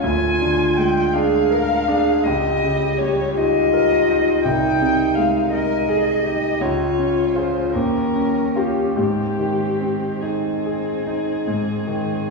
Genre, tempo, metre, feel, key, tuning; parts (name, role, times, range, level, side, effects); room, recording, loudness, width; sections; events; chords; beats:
classical, slow romantic movement for piano trio; 47-57 BPM (dotted quarters); 12/8; rubato; Ab major; A4 = 444 Hz
dark violin; melody; 0.0-12.3 s; G4 to Ab5; -23 LUFS; left 3 dB
warm cello; second line; 0.0-12.3 s; C4 to Bb4; -22 LUFS; right 2 dB
bright concert grand piano; accompaniment; 0.0-12.3 s; C2 to Bb4; -21 LUFS; left 1 dB
wet recital hall reverb, RT60 1.8 s; heard from further back in the room, small room ambience; -17 LUFS; side -2 dB against mid
0.0-12.3 A section
0.0 Bb7/D; 2.2 Eb7/Db; 4.5 Ab/C; 6.6 Db; 7.8 Eb9; 9.0 Ab
| 0.04 1.15 2.25 3.37 | 4.46 5.53 6.63 7.77 | 8.97 10.23 11.48